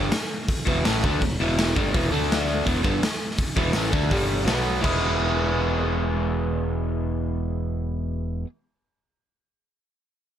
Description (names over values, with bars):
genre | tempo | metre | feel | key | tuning
garage rock duo or trio | 165 BPM | 4/4 | straight | E mixolydian | A4 = 440 Hz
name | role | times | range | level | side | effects
overdriven electric guitar | riff | 0.0-8.5 s | E2 to G#4 | -24 LUFS | equal | none
growling picked electric bass | bass | 0.0-8.4 s | E1 to D2 | -27 LUFS | equal | overdrive
raw garage drum kit | drums | 0.1-4.9 s | crash cymbal, hi-hat, kick drum, snare drum | -25 LUFS | equal | none
room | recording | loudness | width
little or no reverb | none | -21 LUFS | side -10 dB against mid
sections
0.0-4.8 A section; 4.8-7.7 B section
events
none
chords
0.0 E5; 2.1 D5; 2.7 E5; 4.1 G5; 4.5 B5; 4.8 E